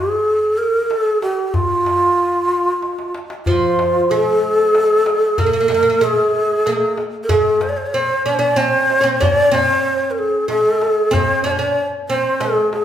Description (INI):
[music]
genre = Arabic maqam ensemble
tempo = 94 BPM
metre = 3/4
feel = straight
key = unclear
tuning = A4 = 440 Hz
[part]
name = breathy bright low ney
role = melody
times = 0.0-12.8 s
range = F4 to D5-42c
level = -15 LUFS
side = equal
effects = none
[part]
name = darbuka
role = percussion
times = 0.8-12.8 s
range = none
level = -25 LUFS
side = left 2 dB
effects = none
[part]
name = oud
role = second line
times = 3.5-12.8 s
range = F3 to D4-50c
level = -20 LUFS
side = right 2 dB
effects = none
[sound]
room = wet large studio reverb, RT60 1.3 s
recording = band playing live in one room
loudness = -14 LUFS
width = side -10 dB against mid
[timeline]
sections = 0.0-3.5 A section; 3.5-12.8 A section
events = drum fill 2.8-3.5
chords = none